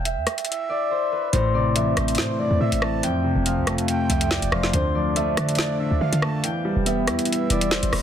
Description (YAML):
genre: hip hop, drill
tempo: 141 BPM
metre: 4/4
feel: half-time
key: A minor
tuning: A4 = 442 Hz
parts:
  - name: concert harp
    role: melody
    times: 0.0-8.0 s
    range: B4 to G5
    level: -26 LUFS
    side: equal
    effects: none
  - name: short 808-style bass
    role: bass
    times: 0.0-8.0 s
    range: E1 to D3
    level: -26 LUFS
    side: equal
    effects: none
  - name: drill drum kit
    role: drums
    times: 0.1-8.0 s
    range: hi-hat, rim click, snare drum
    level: -25 LUFS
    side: equal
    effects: none
  - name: breathy flute-like synth lead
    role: second line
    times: 0.5-8.0 s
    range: C5 to A5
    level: -33 LUFS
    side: right 4 dB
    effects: chorus, digital delay
  - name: dark concert grand piano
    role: accompaniment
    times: 1.3-8.0 s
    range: F2 to E4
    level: -25 LUFS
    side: left 1 dB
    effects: none
  - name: dark analog pad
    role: sustained chords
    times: 1.5-8.0 s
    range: G3 to D5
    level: -29 LUFS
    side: left 3 dB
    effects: chorus
room: little or no reverb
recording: dense, heavily limited modern master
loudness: -20 LUFS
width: side -9 dB against mid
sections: 0.0-1.3 A section; 1.3-8.0 B section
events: break 0.0-1.3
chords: 0.0 Em; 1.3 Am; 3.0 F; 4.7 Dm; 6.4 Em